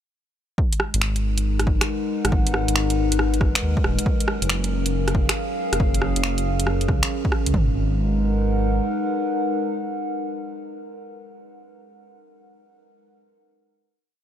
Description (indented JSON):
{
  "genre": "future garage",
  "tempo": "138 BPM",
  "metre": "4/4",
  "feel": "swing 66% on 16ths",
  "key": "G# dorian",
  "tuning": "A4 = 437 Hz",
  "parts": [
    { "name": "warbly tape-like pad", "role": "sustained chords", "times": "0.6-11.5 s", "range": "F#3 to F#5", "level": "-25 LUFS", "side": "equal", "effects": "chorus, built-in reverb, vintage 12-bit sampler grit, sidechain pumping" },
    { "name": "deep house drum kit", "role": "drums", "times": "0.6-7.7 s", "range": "kick drum, toms", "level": "-22 LUFS", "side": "equal", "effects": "overdrive" },
    { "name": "garage drum kit", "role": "drums", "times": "0.7-7.5 s", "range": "finger snaps, hi-hat, rim click", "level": "-25 LUFS", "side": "right 1 dB", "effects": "overdrive" },
    { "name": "dark detuned saw bass", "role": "bass", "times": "0.9-8.8 s", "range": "D#1 to D#2", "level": "-23 LUFS", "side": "equal", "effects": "sidechain pumping" }
  ],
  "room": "light reverb",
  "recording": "none",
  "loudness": "-20 LUFS",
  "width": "side -10 dB against mid",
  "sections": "0.6-7.5 groove; 7.5-11.0 final chord",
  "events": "none",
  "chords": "0.6 G#m9; 4.1 F#maj9; 7.5 G#m9",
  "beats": "| 0.58 1.02 1.45 1.89 | 2.32 2.76 3.19 3.63 | 4.06 4.50 4.93 5.37 | 5.80 6.24 6.67 7.10 | 7.54 7.97 8.41 8.84 | 9.28 9.71 10.15 10.58"
}